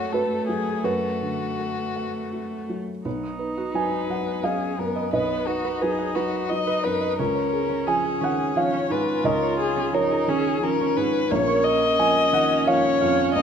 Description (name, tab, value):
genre	neoclassical piano and strings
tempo	87 BPM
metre	3/4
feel	rubato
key	unclear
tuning	A4 = 441 Hz
part	muted violin	melody	0.0-13.4 s	F#4 to D#5	-25 LUFS	left 6 dB	none
part	felt-muted upright piano	accompaniment	0.0-13.4 s	A#1 to G#5	-26 LUFS	right 2 dB	none
part	muted viola	accompaniment	0.0-13.4 s	A3 to E#4	-29 LUFS	right 4 dB	none
part	concert harp	arpeggios	3.1-13.4 s	A#3 to D#6	-29 LUFS	right 4 dB	none
room	moderate large studio reverb, RT60 1.3 s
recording	minimal, uncompressed stereo recording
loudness	-21 LUFS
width	side -7 dB against mid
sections	0.0-3.1 A section; 3.1-13.4 B section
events	none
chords	0.0 D/F#; 3.1 B; 7.2 C#; 11.3 A#m